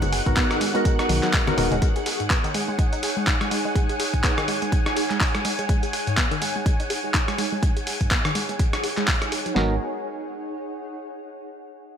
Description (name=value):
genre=deep house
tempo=124 BPM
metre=4/4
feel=swing 58% on 16ths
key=G# minor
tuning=A4 = 440 Hz
part: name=analog pluck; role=arpeggios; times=0.0-9.8 s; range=G#2 to G#4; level=-29 LUFS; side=left 1 dB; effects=chorus, phaser, sidechain pumping, tape echo
part: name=percussive organ stab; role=stabs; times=0.0-1.8, 9.5-9.8 s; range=B3 to A#4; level=-26 LUFS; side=equal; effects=wide subtle chorus, sidechain pumping, ping-pong delay
part: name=organ-like FM bass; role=bass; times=0.0-1.8, 9.6-9.8 s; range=D#1 to B1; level=-25 LUFS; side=equal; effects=sidechain pumping
part: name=dusty soul sampler-style drum kit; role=drums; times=0.0-9.5 s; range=handclaps, hi-hat, rim click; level=-26 LUFS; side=equal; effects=none
part: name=congas and bongos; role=percussion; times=0.0-1.8 s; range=none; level=-31 LUFS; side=left 5 dB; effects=none
part: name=granular cloud pad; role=texture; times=0.0-11.5 s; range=D#4 to G#5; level=-31 LUFS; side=right 1 dB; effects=built-in reverb, sidechain pumping
part: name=soft string machine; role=texture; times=0.0-9.6 s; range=F#5 to F#6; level=-32 LUFS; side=equal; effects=ensemble chorus, sidechain pumping
part: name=house drum kit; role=drums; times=0.3-9.7 s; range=kick drum, snare drum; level=-22 LUFS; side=equal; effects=none
room=light reverb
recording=none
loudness=-20 LUFS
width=side -8 dB against mid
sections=0.0-9.6 A section; 9.6-11.5 B section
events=filter sweep on synth arpeggio sound 0.0-9.6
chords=0.0 G#m9